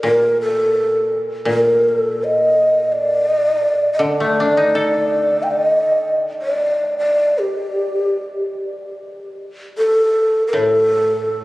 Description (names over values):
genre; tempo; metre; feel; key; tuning
japanese traditional, Japanese chamber music; 72-85 BPM; 4/4; rubato; unclear; A4 = 441 Hz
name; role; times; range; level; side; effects
breathy mellow long shakuhachi; melody; 0.0-11.4 s; G4 to G5; -16 LUFS; equal; none
koto; accompaniment; 0.0-11.4 s; A2 to A4; -22 LUFS; left 1 dB; none
room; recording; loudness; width
moderate cathedral reverb, RT60 5.6 s; recorded on a phone in the room, studio reverb, compression; -14 LUFS; side -19 dB against mid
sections
0.0-9.0 A section; 9.0-11.4 B section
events
none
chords
none